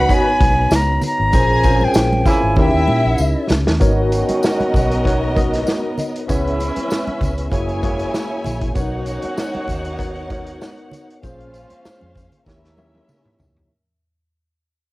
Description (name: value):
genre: lush 1970s-style soul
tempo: 97 BPM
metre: 4/4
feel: swing 54% on 16ths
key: G# minor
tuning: A4 = 441 Hz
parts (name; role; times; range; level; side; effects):
- breathy silver concert flute; melody; 0.0-3.5 s; F#5 to A#5; -19 LUFS; equal; cassette tape
- warm studio string section; second line; 0.0-13.7 s; B3 to B5; -25 LUFS; left 1 dB; cassette tape
- tine electric piano; accompaniment; 0.0-13.7 s; A#3 to D#5; -23 LUFS; left 1 dB; overdrive, fast stereo tremolo, cassette tape
- mellow horn section; stabs; 0.0-13.4 s; C#3 to G#4; -24 LUFS; right 1 dB; cassette tape
- vintage muted fingered electric bass; bass; 0.0-13.7 s; F#1 to A#2; -21 LUFS; equal; none
- vintage drum kit; drums; 0.1-13.7 s; hi-hat, kick drum, snare drum, toms; -20 LUFS; equal; cassette tape
- tambourine; percussion; 0.1-13.6 s; none; -39 LUFS; left 1 dB; none
- congas; percussion; 0.4-13.5 s; none; -29 LUFS; right 2 dB; none
room: little or no reverb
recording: home recording on cassette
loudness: -15 LUFS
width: side -20 dB against mid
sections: 0.0-3.8 A section; 3.8-13.7 B section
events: drum fill 2.6-3.8, 12.5-13.7; fade-out 3.8-13.7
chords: 0.0 Bmaj9; 1.3 A#m9; 2.6 D#7b9; 3.8 G#m11; 6.3 C#m7; 7.5 F#9; 8.8 Bmaj9; 11.2 A#m9; 12.5 D#7b9